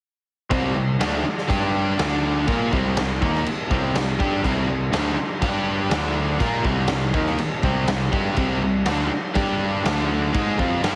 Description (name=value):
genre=hard rock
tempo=122 BPM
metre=4/4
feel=straight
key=C minor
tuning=A4 = 440 Hz
part: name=bright tonewheel organ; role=sustained chords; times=0.5-11.0 s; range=G4 to D6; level=-39 LUFS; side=equal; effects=none
part: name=crunchy overdriven guitar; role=riff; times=0.5-11.0 s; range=C3 to Bb4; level=-30 LUFS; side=equal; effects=none
part: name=high-gain distorted guitar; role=riff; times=0.5-11.0 s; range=C3 to Bb4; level=-32 LUFS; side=equal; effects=distortion
part: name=overdriven semi-hollow guitar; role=riff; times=0.5-11.0 s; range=C3 to Bb4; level=-29 LUFS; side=equal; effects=none
part: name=fuzz picked electric bass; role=bass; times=0.5-11.0 s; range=C2 to Bb2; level=-29 LUFS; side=equal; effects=overdrive
part: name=raw garage drum kit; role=drums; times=0.5-11.0 s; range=crash cymbal, kick drum, snare drum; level=-27 LUFS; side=equal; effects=none
room=light reverb, small room ambience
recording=heavily compressed radio sound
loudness=-22 LUFS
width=mono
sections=0.5-11.0 A section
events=none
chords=0.5 Cm; 1.5 G5; 2.0 D5; 2.5 Cm; 5.4 G5; 5.9 D5; 6.4 Cm; 9.4 G5; 9.8 D5; 10.3 Cm